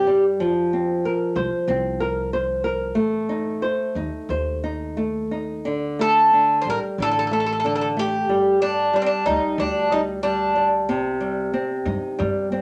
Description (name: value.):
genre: fado-style ballad.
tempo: 92 BPM.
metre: 4/4.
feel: rubato.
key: G minor.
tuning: A4 = 439 Hz.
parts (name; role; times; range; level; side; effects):
Irish bouzouki; melody; 0.0-0.2, 6.0-10.7 s; C4 to C5; -21 LUFS; equal; none.
flamenco guitar; accompaniment; 0.0-12.6 s; C3 to C5; -26 LUFS; equal; none.
upright bass; bass; 0.0-12.6 s; G1 to G2; -34 LUFS; equal; none.
room: wet studio reverb, RT60 0.6 s.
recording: none.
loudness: -22 LUFS.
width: mono.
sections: 0.0-12.6 A section.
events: none.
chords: 0.4 Fsus4; 3.0 Adim; 5.7 Dsus4; 8.3 G5; 10.9 Cm.